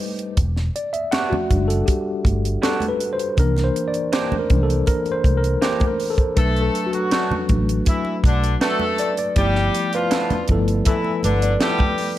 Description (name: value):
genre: lush 1970s-style soul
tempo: 80 BPM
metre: 4/4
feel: straight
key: G major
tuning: A4 = 440 Hz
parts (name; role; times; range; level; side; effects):
- mellow tine electric piano; accompaniment; 0.0-12.2 s; E3 to F#5; -22 LUFS; left 1 dB; medium stereo tremolo
- tight funk drum kit; drums; 0.0-12.2 s; hi-hat, kick drum, snare drum; -22 LUFS; equal; none
- vintage muted fingered electric bass; bass; 0.4-11.5 s; E1 to C2; -21 LUFS; equal; none
- congas; percussion; 0.4-12.0 s; none; -30 LUFS; right 2 dB; none
- electric guitar through a small old amp; riff; 1.1-11.8 s; E3 to A4; -28 LUFS; right 5 dB; none
- warm horn section; stabs; 6.4-12.1 s; D3 to A4; -24 LUFS; left 2 dB; none
room: light reverb, small room ambience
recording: none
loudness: -17 LUFS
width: side -14 dB against mid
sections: 0.0-12.2 A section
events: tine electric piano solo 0.0-12.2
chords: 0.4 Em9; 3.4 C9; 6.4 Bm7; 9.4 G13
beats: | 0.38 1.13 1.88 2.62 | 3.37 4.12 4.87 5.62 | 6.37 7.12 7.87 8.62 | 9.36 10.11 10.86 11.61